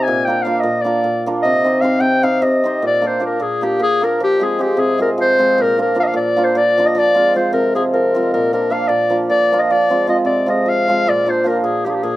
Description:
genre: balkan folk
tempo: 306 BPM (eighths)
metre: 7/8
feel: straight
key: unclear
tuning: A4 = 439 Hz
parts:
  - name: warm clarinet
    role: melody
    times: 0.0-12.2 s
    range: G4 to Ab5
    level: -16 LUFS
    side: left 1 dB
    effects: none
  - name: hammered dulcimer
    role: accompaniment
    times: 0.0-12.2 s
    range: Bb2 to C5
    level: -17 LUFS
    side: right 1 dB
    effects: none
room: little or no reverb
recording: recorded outdoors, with no room sound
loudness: -13 LUFS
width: side -16 dB against mid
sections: 0.0-2.8 A section; 2.8-12.2 B section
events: clarinet solo 0.0-2.8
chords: 0.1 Bb; 1.5 Cm; 2.8 Bb; 4.2 Fm; 5.6 Bb; 7.0 Fm; 8.3 Bb; 9.7 Fm; 11.1 Bb

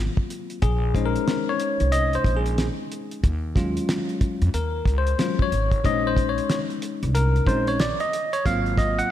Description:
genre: hip hop, jazz-hop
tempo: 92 BPM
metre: 4/4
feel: swing 62% on 16ths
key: Bb minor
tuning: A4 = 440 Hz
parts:
  - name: bell-like tine electric piano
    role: accompaniment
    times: 0.0-9.1 s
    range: Gb3 to Gb5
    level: -24 LUFS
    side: moving between left 7 dB and right 3 dB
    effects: auto-pan
  - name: upright bass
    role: bass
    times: 0.0-9.0 s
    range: Ab1 to F2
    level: -24 LUFS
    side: equal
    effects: none
  - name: cloth-damped thuddy drum kit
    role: drums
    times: 0.2-9.1 s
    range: hi-hat, kick drum, snare drum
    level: -25 LUFS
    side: equal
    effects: none
room: moderate lush hall reverb, RT60 1.8 s, studio reverb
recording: dreamy mix soaked in reverb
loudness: -20 LUFS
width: side -12 dB against mid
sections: 0.0-9.1 A section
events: tine electric piano solo 0.0-9.1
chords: 0.0 Ab13 (rootless); 0.6 Bbm11; 3.2 Ebm11; 5.8 Bbm11; 8.5 Ab13

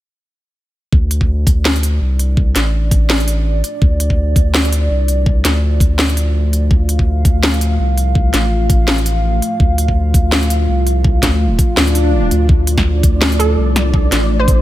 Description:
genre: half-time drum and bass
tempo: 166 BPM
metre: 4/4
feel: swing 57% on 16ths, half-time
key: D minor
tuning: A4 = 440 Hz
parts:
  - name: dark analog pad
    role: sustained chords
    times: 0.9-14.6 s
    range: A3 to F5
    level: -21 LUFS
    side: equal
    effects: chorus, vintage 12-bit sampler grit, sidechain pumping
  - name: saturated sub bass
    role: bass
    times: 0.9-14.6 s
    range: A1 to D2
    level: -15 LUFS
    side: equal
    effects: none
  - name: electronic kick drum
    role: drums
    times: 0.9-14.6 s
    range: none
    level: -13 LUFS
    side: equal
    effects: none
  - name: drum and bass drum kit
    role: drums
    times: 1.1-14.6 s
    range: hi-hat, snare drum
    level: -18 LUFS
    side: equal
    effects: none
  - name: swell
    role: sound effects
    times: 11.9-12.5 s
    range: none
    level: -22 LUFS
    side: right 2 dB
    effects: none
  - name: flickering grainy texture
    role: texture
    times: 12.9-14.6 s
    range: D4 to D5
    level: -24 LUFS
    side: right 1 dB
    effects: built-in reverb
  - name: hollow square pluck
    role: melody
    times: 13.4-14.6 s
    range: A4 to C5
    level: -20 LUFS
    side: right 4 dB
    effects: analog chorus, cassette tape, tape echo
room: little or no reverb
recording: none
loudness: -12 LUFS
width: side -14 dB against mid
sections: 0.9-14.6 A section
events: swell 11.9-12.5; kick drops out 12.1-12.5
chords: 0.9 Dm

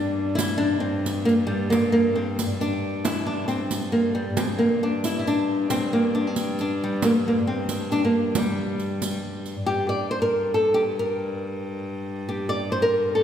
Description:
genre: medieval dance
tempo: 136 BPM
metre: 3/4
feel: straight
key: G dorian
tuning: A4 = 440 Hz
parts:
  - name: flamenco guitar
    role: melody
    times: 0.0-13.2 s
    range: G3 to D5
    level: -22 LUFS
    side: equal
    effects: none
  - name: rich viola da gamba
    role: drone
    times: 0.0-13.2 s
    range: G2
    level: -30 LUFS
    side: equal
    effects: none
  - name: riq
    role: percussion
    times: 0.4-9.6 s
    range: none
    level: -30 LUFS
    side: right 2 dB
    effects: none
room: wet concert hall reverb, RT60 2.2 s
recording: recorded in a church or concert hall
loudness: -21 LUFS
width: side -9 dB against mid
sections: 0.0-9.7 A section; 9.7-13.2 B section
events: none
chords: none

